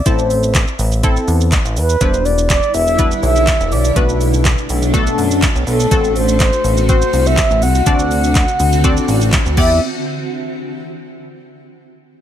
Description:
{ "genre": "dance-pop", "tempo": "123 BPM", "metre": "4/4", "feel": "straight", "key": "E minor", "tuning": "A4 = 436 Hz", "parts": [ { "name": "mellow horn-like synth lead", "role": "melody", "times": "0.0-9.8 s", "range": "A4 to F#5", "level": "-18 LUFS", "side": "equal", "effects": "chorus, ping-pong delay" }, { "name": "punchy chord stab", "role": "accompaniment", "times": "0.1-9.8 s", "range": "G3 to D5", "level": "-20 LUFS", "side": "left 1 dB", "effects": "chorus, sidechain pumping" }, { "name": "chorused synth bass", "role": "bass", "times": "0.1-9.8 s", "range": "E1 to F#2", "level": "-16 LUFS", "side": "equal", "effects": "sidechain pumping" }, { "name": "pop drum kit", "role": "drums", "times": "0.1-9.7 s", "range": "crash cymbal, handclaps, hi-hat, kick drum, shaker", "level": "-17 LUFS", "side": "equal", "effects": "none" }, { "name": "granular cloud pad", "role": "sustained chords", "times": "2.7-9.8 s", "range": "B2 to F#4", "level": "-22 LUFS", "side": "left 1 dB", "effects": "built-in reverb, sidechain pumping" } ], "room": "little or no reverb", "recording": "none", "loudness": "-12 LUFS", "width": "side -10 dB against mid", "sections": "0.0-9.8 A section; 9.8-11.8 B section", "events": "none", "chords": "0.1 Am; 2.0 Em7; 4.0 Bm7; 5.9 F#dim/A; 7.9 D7; 9.6 Em7; 9.8 N.C." }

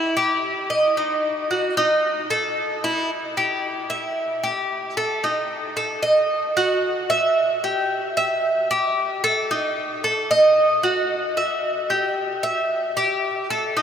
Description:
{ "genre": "latin", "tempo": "112 BPM", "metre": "4/4", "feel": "straight", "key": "E harmonic minor", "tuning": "A4 = 436 Hz", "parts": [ { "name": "Cuban tres", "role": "solo", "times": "0.0-13.8 s", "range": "D#4 to E5", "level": "-19 LUFS", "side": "equal", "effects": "slapback echo" } ], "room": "wet huge ambient reverb, RT60 7.6 s", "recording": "in a vast, echoing space", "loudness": "-19 LUFS", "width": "side -8 dB against mid", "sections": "0.0-3.1 A section; 3.1-13.8 B section", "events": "none", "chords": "none" }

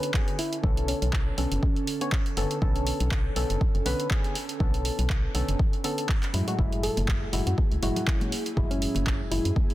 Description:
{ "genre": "deep house", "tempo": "121 BPM", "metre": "4/4", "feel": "swing 56% on 16ths", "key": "unclear", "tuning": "A4 = 440 Hz", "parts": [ { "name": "airy breathy pad", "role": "sustained chords", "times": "0.0-9.7 s", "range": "D3 to A4", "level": "-38 LUFS", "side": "right 3 dB", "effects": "chorus, sidechain pumping" }, { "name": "percussive organ stab", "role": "stabs", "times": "0.0-9.6 s", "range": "A2 to C#5", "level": "-32 LUFS", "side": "left 1 dB", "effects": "chorus, sidechain pumping, dub echo" }, { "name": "punchy analog drum machine", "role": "drums", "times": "0.0-9.7 s", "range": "handclaps, hi-hat", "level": "-33 LUFS", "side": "right 1 dB", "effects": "none" }, { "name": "electronic kick drum", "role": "drums", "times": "0.1-9.7 s", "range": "none", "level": "-26 LUFS", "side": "equal", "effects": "none" }, { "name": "soft struck synth lead", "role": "melody", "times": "0.4-1.9, 6.8-9.5 s", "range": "C#4 to A4", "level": "-34 LUFS", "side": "equal", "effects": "chorus, dub echo" }, { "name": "organ-like FM bass", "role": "bass", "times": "0.6-9.5 s", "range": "F#1 to F#2", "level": "-28 LUFS", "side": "equal", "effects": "sidechain pumping" }, { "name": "congas", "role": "percussion", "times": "7.0-9.7 s", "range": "none", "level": "-38 LUFS", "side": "left 1 dB", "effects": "none" } ], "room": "little or no reverb", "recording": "dense, heavily limited modern master", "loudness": "-24 LUFS", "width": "side -15 dB against mid", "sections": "0.0-9.7 A section", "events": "filter sweep on synth stab 0.0-9.7", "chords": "0.0 Bm9; 6.3 F#m9" }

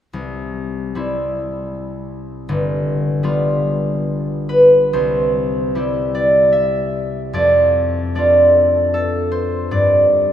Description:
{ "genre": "classical, solo harp piece", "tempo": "75 BPM", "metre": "3/4", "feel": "uneven beats, rubato", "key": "C major", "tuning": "A4 = 440 Hz", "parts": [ { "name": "concert harp", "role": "solo", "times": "0.1-10.3 s", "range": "G1 to E5", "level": "-14 LUFS", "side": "equal", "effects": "none" } ], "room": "wet church reverb, RT60 3.5 s", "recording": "none", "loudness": "-14 LUFS", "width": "side -10 dB against mid", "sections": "0.1-4.9 A section; 4.9-10.3 B section", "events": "none", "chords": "0.1 C; 2.5 G7; 4.9 C; 7.3 Dm/F; 9.7 G7(no3)" }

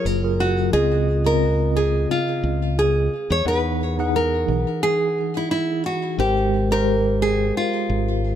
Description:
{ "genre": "sunset chillout", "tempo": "88 BPM", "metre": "4/4", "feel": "swing 56% on 16ths", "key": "unclear", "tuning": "A4 = 437 Hz", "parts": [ { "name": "nylon-string guitar", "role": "melody", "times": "0.0-8.4 s", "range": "E4 to Db5", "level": "-22 LUFS", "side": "right 1 dB", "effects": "digital delay" }, { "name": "mellow tine electric piano", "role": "accompaniment", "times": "0.0-8.4 s", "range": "Db3 to F#5", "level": "-23 LUFS", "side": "left 1 dB", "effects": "medium stereo tremolo, auto-pan, digital delay" }, { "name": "fingered electric bass", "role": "bass", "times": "0.1-8.4 s", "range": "Gb1 to E2", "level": "-23 LUFS", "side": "equal", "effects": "none" } ], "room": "light reverb, small room ambience", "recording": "none", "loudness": "-18 LUFS", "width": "side -10 dB against mid", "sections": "0.0-8.4 A section", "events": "none", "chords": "0.0 Gbmaj9; 0.7 Dbmaj9; 3.1 Emaj9; 6.2 Abmaj9" }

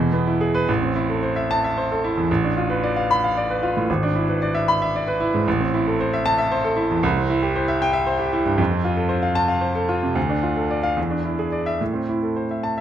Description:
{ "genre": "classical, virtuoso piano study", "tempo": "76 BPM (dotted quarters)", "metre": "6/8", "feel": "rubato", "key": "A minor", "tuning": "A4 = 444 Hz", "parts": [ { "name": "clear grand piano", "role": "solo", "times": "0.0-12.8 s", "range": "G#1 to B5", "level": "-19 LUFS", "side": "equal", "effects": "none" } ], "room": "light reverb", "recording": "close, detailed microphones", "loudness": "-19 LUFS", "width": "side -10 dB against mid", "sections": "0.7-12.8 A section", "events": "none", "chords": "0.0 E; 0.7 Am; 2.3 Bm7b5/A; 3.9 E7/G#; 5.5 Am; 7.0 C; 8.6 F; 10.2 Dm; 11.0 E7; 11.8 Am" }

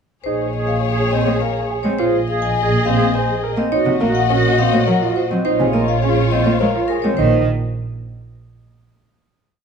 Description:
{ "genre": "classical, minimalist pattern music", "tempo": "104 BPM", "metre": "3/4", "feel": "straight", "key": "Bb minor", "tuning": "A4 = 437 Hz", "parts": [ { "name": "vibraphone with medium hard mallets", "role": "melody", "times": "0.2-7.4 s", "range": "Ab4 to Ab5", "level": "-22 LUFS", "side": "left 12 dB", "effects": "none" }, { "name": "warm symphonic string section", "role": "sustained chords", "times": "0.2-7.0 s", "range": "F4 to Eb5", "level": "-23 LUFS", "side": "left 6 dB", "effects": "none" }, { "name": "warm clarinet", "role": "second line", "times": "0.3-6.9 s", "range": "F4 to Ab4", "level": "-24 LUFS", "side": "right 2 dB", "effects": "none" }, { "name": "clear concert grand piano", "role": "arpeggios", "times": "0.3-7.5 s", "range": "C4 to C5", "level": "-21 LUFS", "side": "right 10 dB", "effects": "none" }, { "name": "rich symphonic double bass section", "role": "bass", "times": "0.3-7.4 s", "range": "Bb1", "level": "-21 LUFS", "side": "right 2 dB", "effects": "none" }, { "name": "rich cello", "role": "accompaniment", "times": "1.3-7.5 s", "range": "C3 to C4", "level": "-21 LUFS", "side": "equal", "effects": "none" } ], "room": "moderate recital hall reverb, RT60 1.5 s", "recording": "dark, warm production", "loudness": "-15 LUFS", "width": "side -6 dB against mid", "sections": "0.3-7.2 A section; 7.2-8.9 final chord", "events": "none", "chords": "0.3 Bbm9; 2.0 Fm7/Bb; 3.7 Ebm9/Bb; 5.5 Dbmaj9/Bb; 7.2 N.C." }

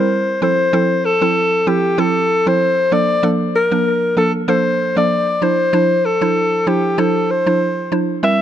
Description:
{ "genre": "afrobeats", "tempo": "96 BPM", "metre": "4/4", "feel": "swing 55% on 16ths", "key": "D minor", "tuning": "A4 = 445 Hz", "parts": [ { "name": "breathy alto saxophone", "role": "melody", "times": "0.0-8.4 s", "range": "G4 to E5", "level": "-16 LUFS", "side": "left 2 dB", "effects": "ping-pong delay" }, { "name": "mallet-like synth pluck", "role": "accompaniment", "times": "0.0-8.4 s", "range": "F3 to C5", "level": "-18 LUFS", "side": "right 2 dB", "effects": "chorus" } ], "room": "light reverb, small room ambience", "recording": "dark, warm production", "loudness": "-14 LUFS", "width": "side -10 dB against mid", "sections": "0.0-8.4 A section", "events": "none", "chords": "0.4 Fmaj7; 2.9 Bbmaj7; 5.4 Dm9" }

